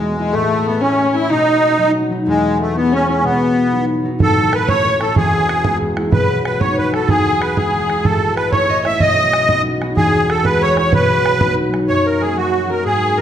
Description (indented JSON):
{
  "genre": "celtic folk, Celtic jig",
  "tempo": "125 BPM (dotted quarters)",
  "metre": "6/8",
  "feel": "straight",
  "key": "B mixolydian",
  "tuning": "A4 = 440 Hz",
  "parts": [
    { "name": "musette accordion", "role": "melody", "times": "0.0-13.2 s", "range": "G#3 to E5", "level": "-16 LUFS", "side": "right 1 dB", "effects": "none" },
    { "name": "dark fiddle", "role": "second line", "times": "0.0-13.2 s", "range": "G#3 to E5", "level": "-22 LUFS", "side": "left 4 dB", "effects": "none" },
    { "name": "concert harp", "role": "accompaniment", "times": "0.0-13.2 s", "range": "E1 to F#4", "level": "-19 LUFS", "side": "left 1 dB", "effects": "none" },
    { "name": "bodhran", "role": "percussion", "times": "4.2-11.8 s", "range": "none", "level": "-20 LUFS", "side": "right 2 dB", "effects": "none" }
  ],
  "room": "wet recital hall reverb, RT60 1.4 s",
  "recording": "dark, warm production",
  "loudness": "-13 LUFS",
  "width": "side -10 dB against mid",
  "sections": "0.0-4.2 A section; 4.2-11.9 A section; 11.9-13.2 B section",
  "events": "none",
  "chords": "0.3 A; 1.3 B; 2.3 E; 3.2 B; 4.2 A; 5.2 E; 6.1 B; 7.1 E; 8.0 A; 9.0 B; 10.0 E; 10.9 B; 11.9 F#"
}